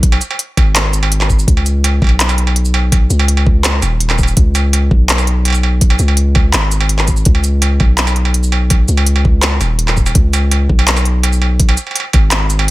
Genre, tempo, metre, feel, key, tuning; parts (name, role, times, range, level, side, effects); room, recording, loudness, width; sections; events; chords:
half-time drum and bass; 166 BPM; 4/4; half-time; A4 = 440 Hz
long sustained 808-style bass; bass; 0.0-12.7 s; D#1 to C#2; -13 LUFS; equal; tube saturation
electronic kick drum; drums; 0.0-12.2 s; -11 LUFS; equal
industrial drum kit; drums; 0.0-12.7 s; handclaps, hi-hat, shaker, struck metal; -16 LUFS; right 1 dB
little or no reverb; -10 LUFS; side -18 dB against mid
0.0-12.7 A section